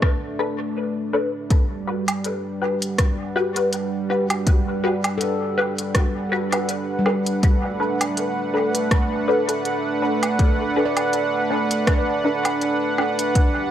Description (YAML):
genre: ambient dub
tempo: 81 BPM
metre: 4/4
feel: swing 56% on 16ths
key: unclear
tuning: A4 = 439 Hz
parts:
  - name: warm analog pad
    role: sustained chords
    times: 0.0-13.7 s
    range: G3 to F#5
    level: -23 LUFS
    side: right 2 dB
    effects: chorus
  - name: handpan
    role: arpeggios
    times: 0.0-0.1, 5.2-13.6 s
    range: G3 to D5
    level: -29 LUFS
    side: equal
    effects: dub echo
  - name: electronic kick drum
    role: drums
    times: 0.0-13.5 s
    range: none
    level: -18 LUFS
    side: equal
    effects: overdrive, studio reverb
  - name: organic electronic drum kit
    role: drums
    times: 0.0-13.5 s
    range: hi-hat, rim click, woodblock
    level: -26 LUFS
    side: right 1 dB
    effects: overdrive, studio reverb, dub echo
  - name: filtered dub chord stab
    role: stabs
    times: 0.4-13.2 s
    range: D4 to B4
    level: -25 LUFS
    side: left 2 dB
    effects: phaser, ensemble chorus, cassette tape, dub echo
room: light reverb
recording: echo-heavy mix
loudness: -19 LUFS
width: side -10 dB against mid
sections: 0.0-1.5 A section; 1.5-13.7 B section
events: none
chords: 0.0 Bm7; 1.5 Gmaj7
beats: 0.02 0.76 | 1.50 2.25 2.99 3.73 | 4.47 5.21 5.95 6.69 | 7.43 8.17 8.91 9.65 | 10.39 11.13 11.88 12.62 | 13.36